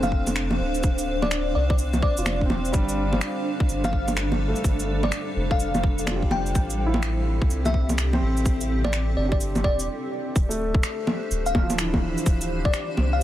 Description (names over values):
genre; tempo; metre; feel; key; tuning
future garage; 126 BPM; 4/4; swing 63% on 16ths; D minor; A4 = 440 Hz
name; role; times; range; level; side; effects
bell-like FM electric piano; melody; 0.0-13.2 s; D5 to G5; -31 LUFS; left 2 dB; chorus, phaser, analog delay
warm upright piano; accompaniment; 0.0-13.2 s; E3 to G4; -31 LUFS; equal; sidechain pumping, analog delay
granular cloud pad; sustained chords; 0.0-13.2 s; G3 to F5; -30 LUFS; equal; built-in reverb, sidechain pumping
soft dub sub bass; bass; 0.0-13.2 s; D1 to C2; -26 LUFS; equal; sidechain pumping
electronic bongos, shaker and finger snaps; drums; 0.0-13.1 s; none; -28 LUFS; equal; soft clipping on snare
electronic kick drum; drums; 0.1-12.7 s; none; -22 LUFS; equal; none
room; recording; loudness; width
little or no reverb; dense, heavily limited modern master, vinyl crackle; -21 LUFS; side -13 dB against mid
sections
0.0-10.4 A section; 10.4-13.2 B section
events
stop 9.9-10.4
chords
0.0 Dm11; 2.7 G9sus4; 6.5 Am7; 10.4 Dm11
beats
0.36 | 0.83 1.31 1.78 2.26 | 2.74 3.21 3.69 4.17 | 4.64 5.12 5.59 6.07 | 6.55 7.02 7.50 7.97 | 8.45 8.93 9.40 9.88 | 10.36 10.83 11.31 11.79 | 12.26 12.74 13.21